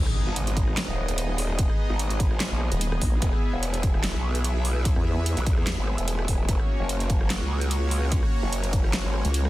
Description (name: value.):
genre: heavy wobble dubstep.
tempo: 147 BPM.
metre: 4/4.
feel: swing 54% on 16ths, half-time.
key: G# minor.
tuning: A4 = 439 Hz.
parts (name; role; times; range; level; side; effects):
supersaw pad; sustained chords; 0.0-9.5 s; A#3 to E5; -32 LUFS; equal; sidechain pumping.
growl bass; bass; 0.0-9.2 s; D#1 to E2; -26 LUFS; equal; chorus, overdrive.
impact; sound effects; 0.0-1.6 s; none; -33 LUFS; equal; none.
dubstep drum kit; drums; 0.1-9.5 s; handclaps, hi-hat, rim click, snare drum; -31 LUFS; right 1 dB; studio reverb.
electronic kick drum; drums; 0.6-8.8 s; none; -24 LUFS; equal; studio reverb.
vowel-sweep wobble bass; bass; 2.7-5.4, 9.2-9.5 s; D#1 to E2; -24 LUFS; equal; chorus, overdrive.
room: digital ambience.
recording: dense, heavily limited modern master.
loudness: -22 LUFS.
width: side -16 dB against mid.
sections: 0.0-9.5 A section.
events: impact 0.0-1.6.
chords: 0.0 G#m; 3.2 E; 6.5 F#.